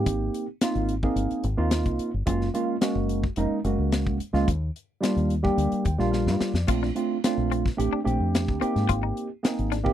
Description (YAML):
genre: electric jazz fusion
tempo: 109 BPM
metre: 4/4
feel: straight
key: unclear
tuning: A4 = 440 Hz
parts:
  - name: tine electric piano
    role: accompaniment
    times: 0.0-9.9 s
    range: G3 to G5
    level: -26 LUFS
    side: right 2 dB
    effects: overdrive, lush chorus
  - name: deep dub fingered electric bass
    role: bass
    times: 0.0-9.9 s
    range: F1 to Ab2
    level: -27 LUFS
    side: left 1 dB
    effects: none
  - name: modern studio drum kit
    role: drums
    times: 0.1-9.9 s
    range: crash cymbal, hi-hat, kick drum, snare drum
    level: -28 LUFS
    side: left 1 dB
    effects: none
  - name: semi-hollow electric guitar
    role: stabs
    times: 6.7-9.9 s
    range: C4 to F4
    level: -33 LUFS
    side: left 20 dB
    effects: analog chorus
room: little or no reverb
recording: dry, close 1970s-style studio recording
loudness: -23 LUFS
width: side -11 dB against mid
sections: 0.0-9.9 A section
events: tine electric piano fill 5.6-6.7; drum fill 6.1-6.7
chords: 0.0 Abmaj9; 2.3 Gbmaj9; 4.5 Ebmaj9; 6.7 Bbmaj9; 8.6 Abmaj9